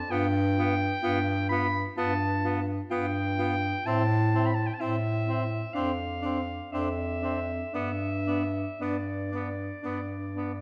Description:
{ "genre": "classical, lyrical piece for single-reed quartet", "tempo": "57-65 BPM", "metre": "4/4", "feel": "rubato", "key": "unclear", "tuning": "A4 = 440 Hz", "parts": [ { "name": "bright clarinet", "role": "melody", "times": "0.0-10.6 s", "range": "D5 to B5", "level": "-35 LUFS", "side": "equal", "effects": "none" }, { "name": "clear alto saxophone", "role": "second line", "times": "0.1-10.5 s", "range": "D4 to F4", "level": "-38 LUFS", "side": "equal", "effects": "none" }, { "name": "warm tenor saxophone", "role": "accompaniment", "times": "0.1-10.5 s", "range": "B3 to C4", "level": "-37 LUFS", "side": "equal", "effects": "none" }, { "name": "mellow bass clarinet", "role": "bass", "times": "0.1-10.6 s", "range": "F2 to A2", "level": "-32 LUFS", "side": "equal", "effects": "none" } ], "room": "wet recital hall reverb, RT60 1.5 s", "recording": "none", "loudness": "-29 LUFS", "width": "mono", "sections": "0.0-10.6 A section", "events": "none", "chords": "0.1 G7; 3.9 Am; 5.8 Dm7/F; 7.7 G", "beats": "| 0.11 1.04 1.99 2.92 | 3.87 4.81 5.75 6.73 | 7.74 8.79 9.84" }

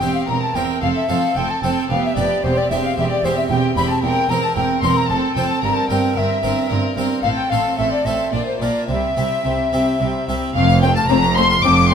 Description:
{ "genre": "classical, baroque-style concerto movement with solo episodes", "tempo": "112 BPM", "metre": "3/4", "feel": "straight", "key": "C major, F major from 4.0 s", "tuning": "A4 = 442 Hz", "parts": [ { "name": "bright wooden flute", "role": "melody", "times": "0.0-11.9 s", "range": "C5 to D6", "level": "-21 LUFS", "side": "left 2 dB", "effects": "none" }, { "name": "rich chamber violin section", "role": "melody", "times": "0.0-11.9 s", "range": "C5 to D6", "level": "-24 LUFS", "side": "left 4 dB", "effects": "none" }, { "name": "rich chamber violin section", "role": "second line", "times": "0.0-11.9 s", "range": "C4 to Bb4", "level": "-25 LUFS", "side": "left 3 dB", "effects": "none" }, { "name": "dark chamber viola section", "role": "accompaniment", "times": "0.0-11.9 s", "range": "G3 to C4", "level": "-24 LUFS", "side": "right 4 dB", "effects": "none" }, { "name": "harpsichord", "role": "accompaniment", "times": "0.0-11.9 s", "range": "E2 to F5", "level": "-27 LUFS", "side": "equal", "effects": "none" }, { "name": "rich chamber cello section", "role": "bass", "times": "0.0-11.9 s", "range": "E2 to C3", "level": "-24 LUFS", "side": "right 3 dB", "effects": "none" }, { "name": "rich chamber double bass section", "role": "bass", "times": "0.0-11.9 s", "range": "E1 to C2", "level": "-24 LUFS", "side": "right 3 dB", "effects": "none" } ], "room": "wet recital hall reverb, RT60 1.4 s", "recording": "none", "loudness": "-16 LUFS", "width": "side -7 dB against mid", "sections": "0.0-10.6 A section; 10.6-11.9 B section", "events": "none", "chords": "0.3 C7/E; 0.8 F; 1.9 G7/F; 2.4 C/E; 4.0 C7/E; 5.1 F; 5.6 C7/G; 7.2 Fmaj13/A; 8.3 Bb; 8.9 C; 10.6 F", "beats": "0.28 | 0.82 1.36 1.90 | 2.43 2.97 3.50 | 4.03 4.57 5.10 | 5.63 6.17 6.70 | 7.24 7.78 8.33 | 8.88 9.44 10.00 | 10.55 11.10 11.63" }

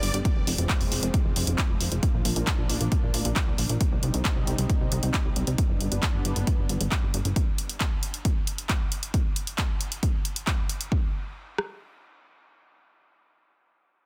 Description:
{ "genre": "uplifting trance", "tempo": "135 BPM", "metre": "4/4", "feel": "straight", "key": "unclear", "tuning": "A4 = 440 Hz", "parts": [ { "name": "lush unison pad", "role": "sustained chords", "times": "0.0-7.3 s", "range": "D3 to Eb4", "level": "-37 LUFS", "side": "equal", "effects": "chorus, sidechain pumping" }, { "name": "plucky analog bass", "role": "bass", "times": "0.0-7.3 s", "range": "F1 to C2", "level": "-30 LUFS", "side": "equal", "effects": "sidechain pumping" }, { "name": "techno drum kit", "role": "drums", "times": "0.0-10.9 s", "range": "handclaps, hi-hat", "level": "-34 LUFS", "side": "equal", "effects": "sidechain pumping on hats, sidechain pumping on cymbals, sidechain pumping on perc" }, { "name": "techno drum kit", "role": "drums", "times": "0.2-11.7 s", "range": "kick drum, rim click", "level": "-29 LUFS", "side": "equal", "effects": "soft clipping on snare" } ], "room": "little or no reverb", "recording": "dense, heavily limited modern master", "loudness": "-26 LUFS", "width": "mono", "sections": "0.0-10.9 A section; 10.9-14.1 B section", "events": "none", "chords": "0.2 Fm; 2.0 Bb; 3.8 Cm; 5.6 G; 7.4 N.C.", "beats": "| 0.25 0.69 1.14 1.58 | 2.03 2.47 2.92 3.36 | 3.81 4.25 4.69 5.14 | 5.58 6.03 6.47 6.92 | 7.36 7.80 8.25 8.69 | 9.14 9.58 10.03 10.47 | 10.92 11.36" }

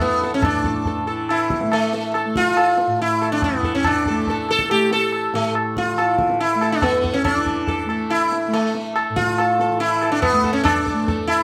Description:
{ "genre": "indian classical, Hindustani", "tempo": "141 BPM", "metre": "4/4", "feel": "straight", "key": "unclear", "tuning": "A4 = 440 Hz", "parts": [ { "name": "sitar", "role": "melody", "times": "0.0-11.4 s", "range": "A3 to A4", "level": "-21 LUFS", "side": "equal", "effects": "none" }, { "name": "tanpura", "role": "drone", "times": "0.0-11.4 s", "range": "A2 to A3", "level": "-28 LUFS", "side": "equal", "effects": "none" }, { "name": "tabla", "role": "percussion", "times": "0.0-11.4 s", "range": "none", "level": "-26 LUFS", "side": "equal", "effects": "none" } ], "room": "wet small room reverb, RT60 0.5 s", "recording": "none", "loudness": "-20 LUFS", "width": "mono", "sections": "0.0-7.3 A section; 7.3-11.4 B section", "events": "none", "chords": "none", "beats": "| 0.42 0.85 1.28 1.70 | 2.13 2.56 2.99 3.41 | 3.84 4.27 4.69 5.12 | 5.55 5.97 6.40 6.83 | 7.25 7.68 8.10 8.53 | 8.95 9.38 9.80 10.23 | 10.65 11.08" }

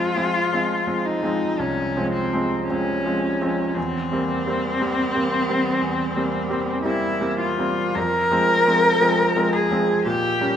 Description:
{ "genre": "classical, romantic duo for cello and grand piano", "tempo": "53-59 BPM", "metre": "4/4", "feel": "rubato", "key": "F minor", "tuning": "A4 = 440 Hz", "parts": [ { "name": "warm cello", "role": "melody", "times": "0.0-10.6 s", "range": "C4 to Bb4", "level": "-21 LUFS", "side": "left 1 dB", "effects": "none" }, { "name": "bright grand piano", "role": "accompaniment", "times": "0.0-10.6 s", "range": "C2 to Db4", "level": "-23 LUFS", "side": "equal", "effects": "none" } ], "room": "wet concert hall reverb, RT60 2.2 s", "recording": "none", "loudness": "-19 LUFS", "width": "side -9 dB against mid", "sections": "0.0-10.6 A section", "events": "none", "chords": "0.0 Fm; 3.8 C7/E; 8.0 Fm; 10.1 Gdim/Bb", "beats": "0.54 1.61 2.70 | 3.77 4.81 5.83 6.86 | 7.96 9.02 10.06" }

